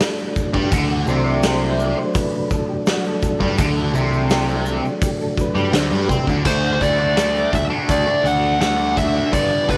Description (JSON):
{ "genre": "psychedelic rock", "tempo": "84 BPM", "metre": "4/4", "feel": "straight", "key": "D mixolydian", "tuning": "A4 = 438 Hz", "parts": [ { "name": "percussive tonewheel organ", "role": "sustained chords", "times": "0.0-9.8 s", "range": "F#3 to D5", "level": "-27 LUFS", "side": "equal", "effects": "fast rotary speaker" }, { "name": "raw garage drum kit", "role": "drums", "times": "0.0-9.8 s", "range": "crash cymbal, hi-hat, kick drum, snare drum", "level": "-25 LUFS", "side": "equal", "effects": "none" }, { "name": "egg shaker", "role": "percussion", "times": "0.0-9.8 s", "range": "none", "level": "-43 LUFS", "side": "equal", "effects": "none" }, { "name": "fuzz guitar", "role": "riff", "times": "0.5-9.8 s", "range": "G2 to D4", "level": "-25 LUFS", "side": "equal", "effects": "distortion, phaser" }, { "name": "fuzz picked electric bass", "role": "bass", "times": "0.5-9.8 s", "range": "G1 to C3", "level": "-24 LUFS", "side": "equal", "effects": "overdrive" }, { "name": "fuzz lead guitar", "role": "melody", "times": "6.5-9.8 s", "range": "B4 to F#5", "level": "-21 LUFS", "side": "equal", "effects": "distortion, tape echo" } ], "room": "light reverb, small room ambience", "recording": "none", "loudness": "-19 LUFS", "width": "mono", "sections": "0.0-6.5 A section; 6.5-9.8 B section", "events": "tonewheel organ solo 0.0-6.5", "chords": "0.0 D", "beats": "0.02 | 0.73 1.45 2.16 2.87 | 3.59 4.30 5.02 5.74 | 6.45 7.17 7.89 8.60 | 9.32" }